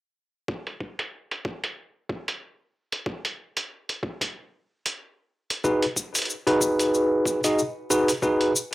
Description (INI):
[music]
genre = glitch hop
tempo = 93 BPM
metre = 4/4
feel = swing 57% on 16ths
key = G# minor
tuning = A4 = 441 Hz
[part]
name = electronic kick drum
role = drums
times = 0.5-8.4 s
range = none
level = -33 LUFS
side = equal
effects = high-pass filter on kick, high-pass filter on room
[part]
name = electronic hi-hat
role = drums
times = 0.7-8.5 s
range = none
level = -28 LUFS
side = right 1 dB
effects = low-pass filter on hats, low-pass filter on room
[part]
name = bell-like tine electric piano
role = stabs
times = 5.6-8.5 s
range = D#4 to D#5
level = -21 LUFS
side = equal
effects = fast stereo tremolo, sidechain pumping, analog delay
[part]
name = cabasa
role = percussion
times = 5.6-8.7 s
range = none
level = -28 LUFS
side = left 2 dB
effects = none
[sound]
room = moderate studio ambience, RT60 0.5 s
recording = dry, gritty hardware recording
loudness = -24 LUFS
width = side -18 dB against mid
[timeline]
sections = 0.5-8.7 A section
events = none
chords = 0.5 G#m7